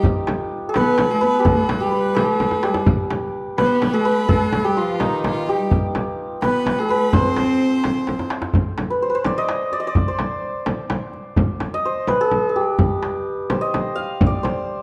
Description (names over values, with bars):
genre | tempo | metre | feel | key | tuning
Persian modal ensemble | 85 BPM (dotted quarters) | 6/8 | straight | C avaz esfahan | A4 = 440 Hz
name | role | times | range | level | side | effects
santur | melody | 0.0-14.8 s | Eb4 to F5 | -23 LUFS | equal | none
clear violin | second line | 0.0-8.3 s | Eb4 to C5 | -33 LUFS | equal | none
rich cello | second line | 0.0-8.3 s | Eb3 to C4 | -26 LUFS | equal | none
frame drum | percussion | 0.0-14.6 s | none | -26 LUFS | equal | none
tombak | percussion | 0.0-14.6 s | none | -25 LUFS | equal | none
room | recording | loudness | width
moderate recital hall reverb, RT60 1.5 s | dark, warm production | -20 LUFS | mono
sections
0.0-8.5 A section; 8.5-14.8 B section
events
drum fill 2.4-2.9, 8.1-8.5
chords
none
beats
| 0.04 0.75 | 1.46 2.17 | 2.88 3.59 | 4.29 5.00 | 5.71 6.42 | 7.13 7.84 | 8.55 9.26 | 9.96 10.67 | 11.38 12.09 | 12.80 13.51 | 14.21